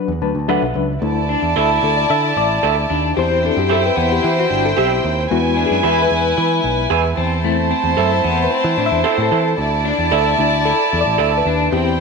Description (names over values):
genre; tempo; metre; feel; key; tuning
soul; 112 BPM; 4/4; straight; D mixolydian; A4 = 440 Hz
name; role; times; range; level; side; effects
reed electric piano; accompaniment; 0.0-12.0 s; F#3 to A5; -21 LUFS; left 8 dB; fast tremolo
picked electric bass; bass; 0.1-12.0 s; G1 to E3; -21 LUFS; right 2 dB; none
electric guitar through a small old amp; stabs; 0.5-11.3 s; G4 to F#5; -22 LUFS; right 10 dB; vibrato effect
warm studio violin section; second line; 1.0-12.0 s; E4 to A5; -18 LUFS; right 2 dB; none
electric guitar through a small old amp; riff; 1.3-11.9 s; A3 to E4; -23 LUFS; left 8 dB; tremolo
room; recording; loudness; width
wet echo chamber reverb, RT60 1.8 s, digital ambience; 1960s-style stereo with parts hard left and right, nothing above 10.5 kHz; -14 LUFS; side -4 dB against mid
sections
0.0-1.0 A section; 1.0-12.0 B section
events
reed electric piano fill 0.0-1.0; reed electric piano solo 1.0-12.0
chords
0.0 D6; 1.0 Dsus2; 3.2 C/E; 5.3 E; 7.2 Am/E; 9.6 Dsus2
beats
0.49 | 1.03 1.56 2.10 2.63 | 3.17 3.70 4.24 4.77 | 5.30 5.84 6.37 6.91 | 7.44 7.98 8.51 9.05 | 9.58 10.12 10.66 11.20 | 11.73